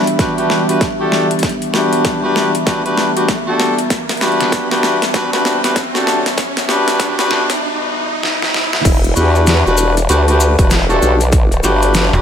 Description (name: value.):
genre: glitch hop.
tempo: 97 BPM.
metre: 4/4.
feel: swing 61% on 16ths.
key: E minor.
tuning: A4 = 439 Hz.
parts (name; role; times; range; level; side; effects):
dark analog pad; sustained chords; 0.0-12.2 s; E3 to D6; -23 LUFS; equal; chorus, sidechain pumping.
bright horn section; stabs; 0.0-12.2 s; D4 to B4; -16 LUFS; left 1 dB; vintage 12-bit sampler grit, sidechain pumping, low-pass filter, ping-pong delay.
dubstep drum kit; drums; 0.0-12.1 s; crash cymbal, hi-hat, snare drum; -19 LUFS; equal; overdrive.
riser; sound effects; 1.6-8.9 s; none; -24 LUFS; right 2 dB; none.
deep dark ambient pad; texture; 0.0-12.2 s; D4 to E5; -25 LUFS; right 1 dB; chorus, built-in reverb, sidechain pumping.
electronic kick drum; drums; 0.2-11.5 s; none; -16 LUFS; equal; overdrive.
formant-sweep wobble bass; bass; 8.8-12.1 s; E1 to E2; -14 LUFS; equal; chorus, overdrive.
tube shaker; percussion; 8.9-12.2 s; none; -25 LUFS; left 5 dB; none.
slap-like FM bass; bass; 12.1-12.2 s; E1; -12 LUFS; equal; tube saturation.
room: light reverb, digital ambience.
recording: high-pass filter.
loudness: -12 LUFS.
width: side -8 dB against mid.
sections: 0.0-8.9 A section; 8.9-12.2 B section.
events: build-up 0.0-8.9; drum fill 0.0-7.6, 8.2-8.9; filter sweep 0.0-8.9; riser 1.6-8.9; break 7.6-8.9; drop 8.9-12.2.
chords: 0.0 Em7.